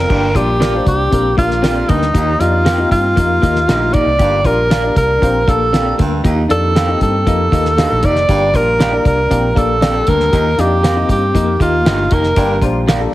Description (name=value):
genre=uptempo 1960s-style soul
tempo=117 BPM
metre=4/4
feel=straight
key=G minor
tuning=A4 = 440 Hz
part: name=breathy tenor saxophone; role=melody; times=0.0-12.6 s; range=Eb4 to D5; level=-15 LUFS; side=equal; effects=none
part: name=dark upright piano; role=accompaniment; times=0.0-13.1 s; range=G2 to F5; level=-21 LUFS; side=left 2 dB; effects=none
part: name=warm baritone saxophone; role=riff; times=0.0-12.6 s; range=D2 to G2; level=-23 LUFS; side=right 4 dB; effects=none
part: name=vintage muted fingered electric bass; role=bass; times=0.0-13.1 s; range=F1 to G2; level=-18 LUFS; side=equal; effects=none
part: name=electric guitar through a small old amp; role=riff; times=0.1-13.1 s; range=Bb3 to G4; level=-23 LUFS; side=left 6 dB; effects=tremolo
part: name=cloth-damped thuddy drum kit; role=drums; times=0.1-13.0 s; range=crash cymbal, hi-hat, kick drum, snare drum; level=-17 LUFS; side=equal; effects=none
part: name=electric guitar through a small old amp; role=stabs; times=0.6-13.0 s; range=F4 to F5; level=-24 LUFS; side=right 5 dB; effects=none
room=light reverb, small room ambience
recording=heavily compressed radio sound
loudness=-11 LUFS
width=side -15 dB against mid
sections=0.1-13.1 A section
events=none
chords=0.1 Gm7; 2.1 Ebadd9; 4.2 Gm7; 6.2 Ebadd9; 8.3 Gm7; 10.3 Ebadd9; 12.4 Gm7